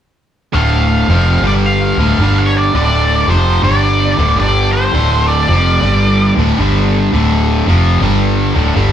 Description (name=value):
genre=rock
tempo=109 BPM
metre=4/4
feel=swing 62% on 8ths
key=D minor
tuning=A4 = 440 Hz
part: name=octave-fuzz lead guitar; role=melody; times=0.5-6.3 s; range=C5 to F5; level=-16 LUFS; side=equal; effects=wah, distortion, slapback echo
part: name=cranked stack guitar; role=riff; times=0.5-8.9 s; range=D2 to G3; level=-14 LUFS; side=equal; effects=overdrive, slapback echo
part: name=vintage muted fingered electric bass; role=bass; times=0.5-8.9 s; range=D1 to G1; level=-14 LUFS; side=equal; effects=none
room=light reverb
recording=live gig heard through the venue's PA, club reverb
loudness=-10 LUFS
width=side -10 dB against mid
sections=0.5-8.9 A section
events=none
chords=0.5 Dm; 1.4 G5; 1.9 Dm; 2.2 G5; 2.7 Dm; 3.6 G5; 4.1 D5; 4.4 G5; 4.9 Dm; 5.8 G5; 6.3 D5; 6.6 G5; 7.1 Dm; 7.9 G5; 8.5 D5